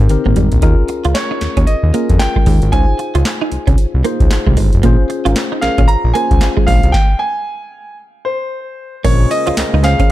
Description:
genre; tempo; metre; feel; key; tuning
R&B, new jack swing; 114 BPM; 4/4; swing 60% on 16ths; Bb dorian; A4 = 440 Hz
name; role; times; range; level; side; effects
bright concert grand piano; melody; 0.0-10.1 s; C5 to Bb5; -19 LUFS; right 1 dB; none
tine electric piano; accompaniment; 0.0-10.1 s; C4 to C5; -21 LUFS; left 6 dB; lush chorus
fat analog bass; bass; 0.0-10.0 s; F1 to F2; -14 LUFS; equal; none
direct-recorded clean electric guitar; riff; 0.1-10.1 s; G3 to F4; -21 LUFS; right 6 dB; ensemble chorus
booming analog drum machine; drums; 0.1-10.1 s; crash cymbal, handclaps, hi-hat, kick drum, snare drum, tambourine, toms; -14 LUFS; equal; none
funky polysynth comp; stabs; 5.3-5.8, 9.5-10.0 s; Db4 to C5; -23 LUFS; right 4 dB; chorus
pedal harmonium; sustained chords; 9.1-10.1 s; Db3 to Bb3; -24 LUFS; left 3 dB; none
room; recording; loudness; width
little or no reverb; dark, warm production; -11 LUFS; side -15 dB against mid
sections
0.6-9.0 A section; 9.0-10.1 B section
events
drum fill 0.1-0.6; stop 6.9-9.0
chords
0.0 Abmaj9; 0.6 Eb7sus4; 2.7 Dbmaj7; 4.8 Bbm7; 6.9 N.C.; 9.0 Bbm9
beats
0.10 | 0.62 1.15 1.68 2.20 | 2.73 3.26 3.78 4.31 | 4.83 5.36 5.89 6.41 | 6.94 7.47 7.99 8.52 | 9.04 9.57 10.10

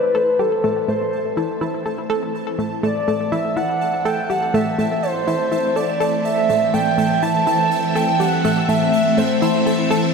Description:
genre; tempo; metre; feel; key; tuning
ambient, sequencer-driven space music; 123 BPM; 4/4; straight; A dorian; A4 = 440 Hz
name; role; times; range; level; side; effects
breathy flute-like synth lead; melody; 0.0-9.9 s; A4 to A5; -20 LUFS; equal; lush chorus, ping-pong delay
phased string machine; sustained chords; 0.0-10.1 s; E3 to E5; -22 LUFS; equal; ensemble chorus, phaser
pulsing gated texture; texture; 0.0-10.1 s; A5; -32 LUFS; right 6 dB; chorus, built-in reverb
analog pluck; riff; 0.1-10.0 s; A3 to A4; -23 LUFS; equal; chorus, ping-pong delay
room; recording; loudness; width
wet cathedral reverb, RT60 5.1 s; dreamy mix soaked in reverb; -17 LUFS; side -5 dB against mid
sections
0.0-10.1 A section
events
fade-in on string machine 0.0-10.1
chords
0.0 Am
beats
| 0.40 0.88 1.37 1.86 | 2.35 2.83 3.32 3.81 | 4.30 4.79 5.27 5.76 | 6.25 6.74 7.22 7.71 | 8.20 8.69 9.18 9.66

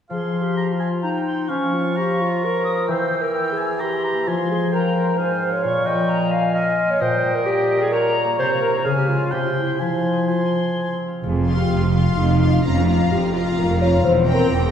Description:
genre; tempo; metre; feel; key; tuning
classical, dramatic, fast romantic movement for symphony orchestra; 130 BPM; 3/4; straight; F minor; A4 = 440 Hz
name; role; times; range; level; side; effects
bright small flute group; second line; 0.1-11.0 s; G5 to E6; -29 LUFS; left 4 dB; none
clear oboe; second line; 0.1-11.0 s; Db5 to Bb5; -28 LUFS; right 2 dB; none
mellow clarinet; second line; 0.1-11.0 s; Db4 to F5; -23 LUFS; equal; none
mellow bassoon; accompaniment; 0.1-11.0 s; Ab2 to F3; -26 LUFS; right 2 dB; none
concert harp; arpeggios; 0.1-14.7 s; Bb2 to Db6; -24 LUFS; left 2 dB; none
dark French horn section; sustained chords; 11.2-14.7 s; Db4 to Db5; -22 LUFS; left 4 dB; none
rich symphonic cello section; bass; 11.2-14.7 s; E2 to F2; -23 LUFS; right 2 dB; none
rich symphonic double bass section; bass; 11.2-14.7 s; E1 to F1; -21 LUFS; right 3 dB; none
clear studio violin section; melody; 11.5-14.7 s; Bb5 to C6; -31 LUFS; left 4 dB; none
rich symphonic violin section; second line; 11.5-14.7 s; F5 to G5; -28 LUFS; left 2 dB; none
warm studio viola section; accompaniment; 11.5-14.7 s; C4 to F4; -26 LUFS; right 2 dB; none
room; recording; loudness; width
wet concert hall reverb, RT60 2.0 s; heard from further back in the room; -17 LUFS; side -8 dB against mid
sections
0.1-11.2 A section; 11.2-14.7 A section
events
none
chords
0.1 Fm; 1.5 Bbm/F; 2.9 C7/E; 4.3 Fm; 5.6 Bbm; 7.0 Gdim/Bb; 8.4 C7b9; 8.8 Db; 9.3 C; 9.8 Fm; 12.6 Bb5/F; 14.0 C7/E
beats
| 0.10 0.57 1.03 | 1.49 1.96 2.42 | 2.88 3.34 3.81 | 4.27 4.72 5.18 | 5.64 6.09 6.55 | 7.00 7.46 7.93 | 8.39 8.85 9.32 | 9.80 10.28 10.76 | 11.24 11.71 12.18 | 12.64 13.11 13.57 | 14.04 14.49

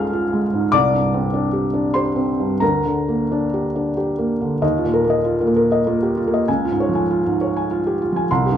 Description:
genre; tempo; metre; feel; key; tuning
neoclassical minimalist piano; 86-101 BPM; 3/4; rubato; Eb major; A4 = 440 Hz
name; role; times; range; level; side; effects
felt-muted upright piano; solo; 0.0-8.6 s; C2 to Ab6; -17 LUFS; equal; none
room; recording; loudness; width
wet large studio reverb, RT60 0.9 s; band playing live in one room; -17 LUFS; side -9 dB against mid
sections
0.0-4.6 A section; 4.6-8.6 B section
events
none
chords
0.0 Db; 0.7 Csus2; 2.6 Gm/D; 4.6 Ebsus2; 6.5 Db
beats
0.12 | 0.72 1.32 1.95 | 2.61 3.30 3.97 | 4.62 5.25 5.87 | 6.48 7.09 7.70 | 8.30

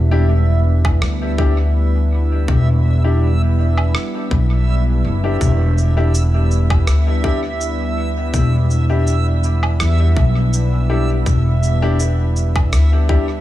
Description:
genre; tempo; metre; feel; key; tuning
ambient dub; 82 BPM; 4/4; swing 53% on 16ths; E minor; A4 = 440 Hz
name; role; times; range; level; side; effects
warm analog pad; sustained chords; 0.0-13.4 s; G3 to B4; -25 LUFS; right 1 dB; chorus
upright bass; bass; 0.0-13.4 s; E1 to E2; -15 LUFS; equal; none
backwards swelling texture; texture; 0.0-13.4 s; E5; -29 LUFS; right 6 dB; built-in reverb
warm upright piano; stabs; 0.1-13.2 s; D4 to G4; -25 LUFS; left 4 dB; dub echo
electronic kick drum; drums; 0.8-13.2 s; none; -19 LUFS; equal; overdrive
electronic woodblock, rim click and shaker; drums; 0.8-12.9 s; none; -27 LUFS; right 1 dB; dub echo
room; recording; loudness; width
little or no reverb; none; -14 LUFS; side -14 dB against mid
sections
0.0-13.4 A section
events
none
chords
0.0 Em7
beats
0.29 1.02 1.75 | 2.48 3.21 3.95 4.68 | 5.41 6.14 6.87 7.61 | 8.34 9.07 9.80 10.53 | 11.26 11.99 12.73

